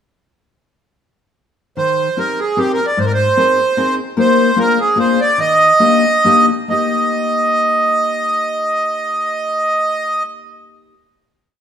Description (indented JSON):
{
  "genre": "musette waltz",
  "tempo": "129-152 BPM",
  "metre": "3/4",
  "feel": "swing 53% on 8ths, rubato",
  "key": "Eb major",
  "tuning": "A4 = 440 Hz",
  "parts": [
    { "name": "accordion", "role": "melody", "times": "1.8-10.2 s", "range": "G4 to Eb5", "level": "-13 LUFS", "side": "right 2 dB", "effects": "none" },
    { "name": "fingerpicked steel-string acoustic guitar", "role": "accompaniment", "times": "1.8-10.9 s", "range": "Ab2 to Bb4", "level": "-19 LUFS", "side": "left 5 dB", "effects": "none" }
  ],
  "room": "wet stone room reverb, RT60 1.3 s",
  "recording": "band playing live in one room",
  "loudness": "-12 LUFS",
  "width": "side -8 dB against mid",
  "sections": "1.8-6.7 A section; 6.7-9.5 final chord",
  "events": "slowing down 4.2-6.7",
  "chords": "1.8 Eb6; 3.0 Abadd9; 4.2 Eb/Bb; 4.6 Bb7; 5.4 Ebmaj7; 6.7 Eb",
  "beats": "| 1.77 2.18 2.58 | 2.98 3.38 3.77 | 4.17 4.57 4.97 | 5.38 5.81 6.25 | 6.71 7.17 7.63 | 8.09 8.55 9.01"
}